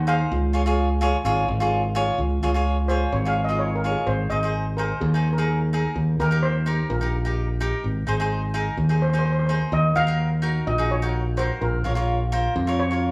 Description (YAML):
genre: calypso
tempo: 127 BPM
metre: 4/4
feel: straight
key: Db major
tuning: A4 = 444 Hz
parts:
  - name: modern bright fingered electric bass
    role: bass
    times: 0.0-13.1 s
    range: Ab1 to F2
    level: -25 LUFS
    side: equal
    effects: none
  - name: steel pan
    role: melody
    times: 0.1-13.1 s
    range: Ab4 to F5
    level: -29 LUFS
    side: equal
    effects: none
  - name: cavaquinho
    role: accompaniment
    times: 0.1-13.1 s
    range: Eb4 to Db5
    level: -29 LUFS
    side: equal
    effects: none
room: moderate large studio reverb, RT60 1.2 s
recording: band playing live in one room, small room ambience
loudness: -23 LUFS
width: mono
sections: 0.0-2.2 A section; 2.2-13.1 B section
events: steel pan solo 2.2-13.1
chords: 0.3 Db; 4.1 Ab; 6.0 Eb; 7.8 Ab; 9.7 Ebmadd9; 11.6 Bbm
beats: | 0.31 0.78 1.25 1.72 | 2.19 2.66 3.13 3.60 | 4.07 4.54 5.01 5.48 | 5.95 6.42 6.89 7.37 | 7.84 8.31 8.78 9.25 | 9.72 10.20 10.67 11.14 | 11.61 12.08 12.55 13.03